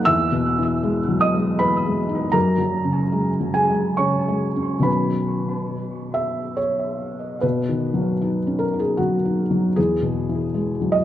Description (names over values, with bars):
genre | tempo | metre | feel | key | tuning
neoclassical minimalist piano | 67-82 BPM | 3/4 | rubato | B major | A4 = 440 Hz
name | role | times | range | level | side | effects
felt-muted upright piano | solo | 0.0-11.0 s | E2 to F#6 | -19 LUFS | equal | tape echo
room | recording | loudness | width
wet recital hall reverb, RT60 1.4 s | dark, warm production | -19 LUFS | side -12 dB against mid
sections
0.0-7.4 A section; 7.4-11.0 A section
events
none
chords
0.1 Emaj7; 2.3 F#sus2; 4.9 Badd9; 9.8 E